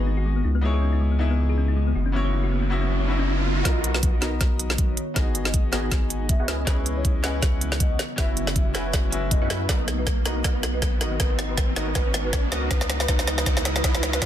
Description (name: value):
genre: future bass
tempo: 159 BPM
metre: 4/4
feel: swing 56% on 16ths, half-time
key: B major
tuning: A4 = 440 Hz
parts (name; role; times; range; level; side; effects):
- bright grand piano; accompaniment; 0.0-9.7 s; B3 to F#5; -31 LUFS; left 4 dB; sidechain pumping, ping-pong delay
- ethereal airy pad; sustained chords; 0.0-14.3 s; C#3 to D#5; -36 LUFS; right 1 dB; ensemble chorus, built-in reverb, sidechain pumping
- thumb-piano-like synth pluck; arpeggios; 0.0-3.6, 9.7-14.3 s; G#3 to C#5; -34 LUFS; left 5 dB; chorus, sidechain pumping, ping-pong delay
- saturated sub bass; bass; 0.0-14.3 s; F#1 to F#2; -26 LUFS; equal; sidechain pumping
- riser; sound effects; 1.8-14.3 s; none; -33 LUFS; right 3 dB; none
- trap drum kit; drums; 3.5-14.3 s; hi-hat, snare drum; -27 LUFS; equal; high-pass filter on hats, low-pass filter on hats, high-pass filter on snare, low-pass filter on snare
- warm velvety synth lead; melody; 3.7-14.3 s; B4 to E5; -35 LUFS; left 1 dB; chorus, sidechain pumping, dub echo
- supersaw stab; riff; 3.7-14.3 s; B3 to G#5; -32 LUFS; right 1 dB; sidechain pumping, low-pass filter
- electronic kick drum; drums; 3.7-14.3 s; none; -23 LUFS; equal; none
room: little or no reverb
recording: dense, heavily limited modern master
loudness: -21 LUFS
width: side -11 dB against mid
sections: 0.0-3.7 A section; 3.7-14.3 B section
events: filter sweep on ambient pad 0.0-3.7, 3.7-14.3; riser 1.8-3.7, 3.7-14.3; build-up 3.7-14.3; drum fill 3.7-14.3; filter sweep on supersaw synth 3.7-14.3; filter sweep on soft synth lead 3.7-14.3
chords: 0.4 C#m9; 2.0 F#7sus4; 3.7 Bmaj7; 5.0 G#m7; 6.5 C#m9; 8.0 F#7sus4; 9.7 Bmaj7; 11.0 G#m7; 12.5 C#m9